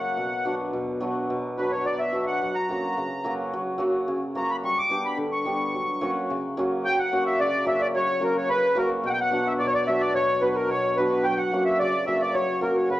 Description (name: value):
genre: balkan folk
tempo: 109 BPM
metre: 2/4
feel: straight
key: F# phrygian dominant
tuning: A4 = 438 Hz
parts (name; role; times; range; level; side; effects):
- accordion; melody; 0.0-13.0 s; A#4 to D6; -24 LUFS; equal; light tremolo tuning
- hammered dulcimer; accompaniment; 0.0-13.0 s; B2 to G4; -26 LUFS; equal; none
room: wet recital hall reverb, RT60 1.3 s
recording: worn, warbling old tape, cassette tape, warbly pitch drift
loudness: -22 LUFS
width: side -15 dB against mid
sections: 0.0-6.8 A section; 6.8-13.0 B section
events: accordion solo 0.0-6.8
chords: 0.2 Bm; 2.4 F#; 4.6 G; 5.7 F#; 9.0 Bm; 11.2 F#